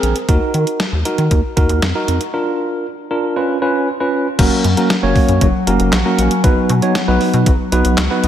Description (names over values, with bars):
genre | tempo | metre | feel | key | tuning
synth-pop | 117 BPM | 4/4 | straight | unclear | A4 = 440 Hz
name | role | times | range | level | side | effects
tine electric piano | accompaniment | 0.0-8.3 s | Bb3 to Db5 | -17 LUFS | right 2 dB | fast stereo tremolo
rubbery square bass | bass | 0.0-8.3 s | Gb1 to Eb3 | -17 LUFS | equal | none
detuned 8-bit digital drum machine | drums | 0.0-8.3 s | crash cymbal, handclaps, hi-hat, kick drum, snare drum | -17 LUFS | equal | none
concert harp | arpeggios | 4.4-8.3 s | Gb3 to Gb4 | -18 LUFS | left 3 dB | tape echo
room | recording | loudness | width
moderate lush hall reverb, RT60 1.9 s | big arena sound | -13 LUFS | side -10 dB against mid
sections
0.0-4.4 A section; 4.4-8.3 B section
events
break 2.3-4.4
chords
0.3 Ebm; 2.3 Bb; 3.4 Db7; 4.4 Gb; 6.4 B